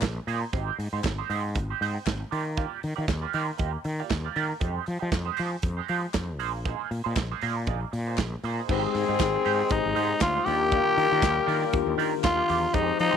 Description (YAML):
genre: disco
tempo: 118 BPM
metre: 4/4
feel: swing 56% on 16ths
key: Eb major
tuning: A4 = 439 Hz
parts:
  - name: semi-hollow electric guitar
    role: accompaniment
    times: 0.0-13.2 s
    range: Ab3 to Eb5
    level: -32 LUFS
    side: right 13 dB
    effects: wah, analog chorus
  - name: fretless electric bass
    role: bass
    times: 0.0-13.2 s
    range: Ab1 to F3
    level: -30 LUFS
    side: left 1 dB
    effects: none
  - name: modern studio drum kit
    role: drums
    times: 0.0-13.1 s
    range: crash cymbal, hi-hat, kick drum, snare drum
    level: -31 LUFS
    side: right 2 dB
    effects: none
  - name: group handclap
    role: percussion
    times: 0.0-12.4 s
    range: none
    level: -38 LUFS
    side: left 15 dB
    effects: none
  - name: growling tenor saxophone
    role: melody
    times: 8.7-13.2 s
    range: C4 to G4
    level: -25 LUFS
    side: left 1 dB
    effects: none
  - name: mellow tine electric piano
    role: accompaniment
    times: 8.7-13.2 s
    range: Eb3 to C5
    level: -32 LUFS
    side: left 15 dB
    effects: medium stereo tremolo
  - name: mellow horn section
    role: stabs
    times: 8.7-13.2 s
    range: Eb3 to C5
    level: -29 LUFS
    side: left 13 dB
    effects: none
room: light reverb, small room ambience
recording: 1960s-style stereo with parts hard left and right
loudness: -24 LUFS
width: side -8 dB against mid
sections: 0.0-8.7 A section; 8.7-13.2 B section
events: none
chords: 0.0 Bb9sus4; 0.5 Abmaj7; 2.3 Ebmaj9; 4.6 Fm9; 6.4 Bb9sus4; 8.7 Abmaj7; 10.5 Ebmaj9